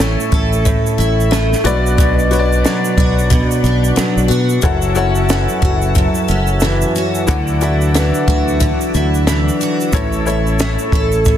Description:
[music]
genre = acoustic pop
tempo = 91 BPM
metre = 4/4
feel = swing 60% on 16ths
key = B minor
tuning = A4 = 440 Hz
[part]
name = felt-muted upright piano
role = accompaniment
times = 0.0-11.4 s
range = E4 to F#5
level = -22 LUFS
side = left 5 dB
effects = none
[part]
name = picked steel-string acoustic guitar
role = accompaniment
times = 0.0-11.4 s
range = F#2 to A4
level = -18 LUFS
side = equal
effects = double-tracked left and right
[part]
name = tonewheel organ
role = sustained chords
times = 0.0-11.4 s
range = F#3 to A4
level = -23 LUFS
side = equal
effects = chorus vibrato, slow rotary speaker
[part]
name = fingered electric bass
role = bass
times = 0.0-11.4 s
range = F#1 to B2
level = -17 LUFS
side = equal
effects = none
[part]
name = compact cocktail drum kit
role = drums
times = 0.0-11.4 s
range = kick drum, shaker, snare drum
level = -18 LUFS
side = equal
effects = none
[part]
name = tube shaker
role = percussion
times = 0.0-11.4 s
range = none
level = -30 LUFS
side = right 7 dB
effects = none
[sound]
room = light reverb, small room ambience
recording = dense, heavily limited modern master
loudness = -12 LUFS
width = side -10 dB against mid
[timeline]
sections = 0.0-11.4 A section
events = none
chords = 0.0 A; 1.7 Bm; 4.6 F#m7; 7.3 Dadd9; 9.9 A

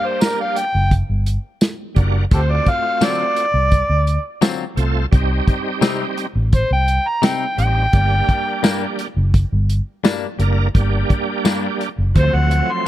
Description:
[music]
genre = straight-eighth soul blues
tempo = 85 BPM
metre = 4/4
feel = straight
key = G harmonic minor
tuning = A4 = 440 Hz
[part]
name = overdriven harmonica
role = melody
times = 0.0-12.9 s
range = G4 to C6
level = -19 LUFS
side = equal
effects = none
[part]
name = bright tonewheel organ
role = accompaniment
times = 0.0-12.9 s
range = E#3 to Bb4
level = -24 LUFS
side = right 4 dB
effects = slow rotary speaker, chorus vibrato
[part]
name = warm soul drum kit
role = drums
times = 0.2-12.7 s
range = hi-hat, kick drum, snare drum, tambourine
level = -18 LUFS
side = equal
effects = none
[part]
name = vintage muted fingered electric bass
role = bass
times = 0.7-12.6 s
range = F#1 to D2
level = -17 LUFS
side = equal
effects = none
[part]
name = direct-recorded clean electric guitar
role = stabs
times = 3.0-11.7 s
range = G2 to E#4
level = -24 LUFS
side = left 9 dB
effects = none
[sound]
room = little or no reverb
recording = none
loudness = -15 LUFS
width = side -13 dB against mid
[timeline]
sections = 0.0-12.9 A section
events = harmonica solo 0.0-12.9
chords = 0.0 Gm; 2.3 D7#9; 5.1 Cm; 7.9 Gm; 12.2 D7#9

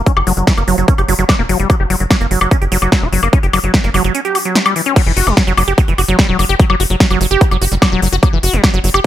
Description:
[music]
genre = psychedelic trance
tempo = 147 BPM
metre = 4/4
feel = straight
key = unclear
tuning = A4 = 440 Hz
[part]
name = tight sequencer bass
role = bass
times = 0.0-9.0 s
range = E1 to F#1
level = -16 LUFS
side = equal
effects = none
[part]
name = liquid acid bass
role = riff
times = 0.1-9.0 s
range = E3 to G4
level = -16 LUFS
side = moving between left 6 dB and right 7 dB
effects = chorus, auto-pan, sidechain pumping, dub echo
[part]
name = big-room dance drum kit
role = drums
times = 0.1-9.0 s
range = crash cymbal, hi-hat, snare drum, woodblock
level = -16 LUFS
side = left 2 dB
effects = overdrive
[part]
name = electronic kick drum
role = drums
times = 0.1-8.7 s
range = none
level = -12 LUFS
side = equal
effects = overdrive
[sound]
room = little or no reverb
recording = none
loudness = -11 LUFS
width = side -12 dB against mid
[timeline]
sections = 0.0-5.0 A section; 5.0-9.1 B section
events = drop 5.0-9.1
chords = 0.0 F#5; 5.0 Emadd9 (rootless)

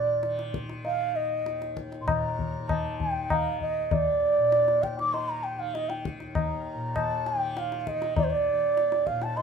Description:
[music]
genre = indian classical, Hindustani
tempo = 98 BPM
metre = 7/4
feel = straight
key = Eb raga yaman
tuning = A4 = 440 Hz
[part]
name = breathy mellow bansuri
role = melody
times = 0.0-9.4 s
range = C5 to D6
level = -26 LUFS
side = right 2 dB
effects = none
[part]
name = tanpura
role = drone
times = 0.0-9.4 s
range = Eb2 to Eb3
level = -36 LUFS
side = left 1 dB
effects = none
[part]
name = tabla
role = percussion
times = 0.2-9.4 s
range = none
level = -30 LUFS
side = left 3 dB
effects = none
[sound]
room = moderate large studio reverb, RT60 1.1 s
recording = band playing live in one room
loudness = -25 LUFS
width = side -6 dB against mid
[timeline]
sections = 0.0-9.4 A section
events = none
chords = none

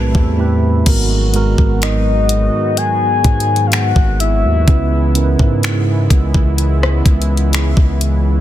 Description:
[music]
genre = contemporary R&B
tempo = 63 BPM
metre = 4/4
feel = straight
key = G# minor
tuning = A4 = 437 Hz
[part]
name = mellow tine electric piano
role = accompaniment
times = 0.0-8.4 s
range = G#2 to B5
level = -19 LUFS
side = right 4 dB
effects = none
[part]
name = warm analog pad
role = sustained chords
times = 0.0-8.4 s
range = C3 to F#4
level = -23 LUFS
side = equal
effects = chorus
[part]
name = long sustained 808-style bass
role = bass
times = 0.0-8.4 s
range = G#1 to G#2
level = -15 LUFS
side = equal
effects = none
[part]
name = smooth R&B drum kit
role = drums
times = 0.1-8.2 s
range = crash cymbal, finger snaps, hi-hat, kick drum, rim click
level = -15 LUFS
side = equal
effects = soft clipping on snare
[part]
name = soft octave-layered synth lead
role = melody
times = 1.8-5.6 s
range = D#5 to G#5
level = -18 LUFS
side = left 4 dB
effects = chorus, phaser, ping-pong delay
[sound]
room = little or no reverb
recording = dense, heavily limited modern master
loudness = -11 LUFS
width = side -13 dB against mid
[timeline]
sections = 0.9-8.4 A section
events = tine electric piano fill 0.0-0.9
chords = 0.0 Am7; 0.9 G#m7; 4.7 C#m7

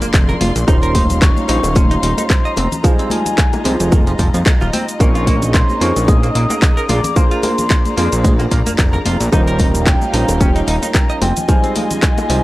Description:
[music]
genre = nu-disco, nu disco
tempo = 111 BPM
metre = 4/4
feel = swing 55% on 16ths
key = Bb dorian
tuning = A4 = 440 Hz
[part]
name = soft octave-layered synth lead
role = melody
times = 0.0-12.4 s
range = G5 to Eb6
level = -23 LUFS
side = left 1 dB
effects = chorus, phaser, analog delay
[part]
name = dark baby grand piano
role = accompaniment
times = 0.0-12.4 s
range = G3 to C5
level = -23 LUFS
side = right 1 dB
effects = none
[part]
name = rich studio string section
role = sustained chords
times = 0.0-12.4 s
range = Bb3 to C6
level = -26 LUFS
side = left 1 dB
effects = sidechain pumping
[part]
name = direct-recorded clean electric guitar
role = riff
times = 0.0-12.4 s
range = Eb3 to Eb5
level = -24 LUFS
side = right 3 dB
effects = lush chorus
[part]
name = fat analog bass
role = bass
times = 0.0-12.4 s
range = Eb1 to F2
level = -17 LUFS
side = equal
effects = none
[part]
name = house drum kit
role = drums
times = 0.0-12.4 s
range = cabasa, handclaps, hi-hat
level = -22 LUFS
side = equal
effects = none
[part]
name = congas, maracas and bongos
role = percussion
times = 0.0-12.4 s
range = none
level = -24 LUFS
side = left 2 dB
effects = none
[part]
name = electronic kick drum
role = drums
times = 0.1-12.1 s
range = none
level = -13 LUFS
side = equal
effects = none
[sound]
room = digital ambience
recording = dry, gritty hardware recording, transformer saturation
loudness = -12 LUFS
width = side -17 dB against mid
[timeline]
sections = 0.0-12.4 A section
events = none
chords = 0.0 Bb9; 0.7 Eb13; 2.6 Fm9; 5.0 Bbm11; 6.9 Bb9; 9.3 Eb13; 11.2 Fm9

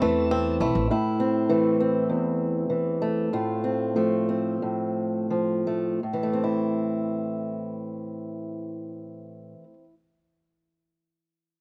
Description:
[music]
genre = folk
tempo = 81-102 BPM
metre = 4/4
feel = straight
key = A minor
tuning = A4 = 440 Hz
[part]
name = pedal steel guitar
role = melody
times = 0.0-0.6 s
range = A5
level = -46 LUFS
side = equal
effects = none
[part]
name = fingerpicked acoustic archtop guitar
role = accompaniment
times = 0.0-9.9 s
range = E2 to F4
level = -26 LUFS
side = equal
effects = slapback echo
[part]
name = bluegrass banjo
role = arpeggios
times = 0.0-1.0 s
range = E3 to E4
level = -33 LUFS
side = equal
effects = none
[part]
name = upright bass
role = bass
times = 0.0-0.9 s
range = A1 to E2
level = -30 LUFS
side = equal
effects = none
[sound]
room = little or no reverb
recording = recorded outdoors, with no room sound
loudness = -26 LUFS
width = mono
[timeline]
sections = 0.9-6.0 A section; 6.0-9.0 B section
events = slowing down 0.9-6.0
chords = 0.0 Am; 3.3 F/A; 6.0 Am

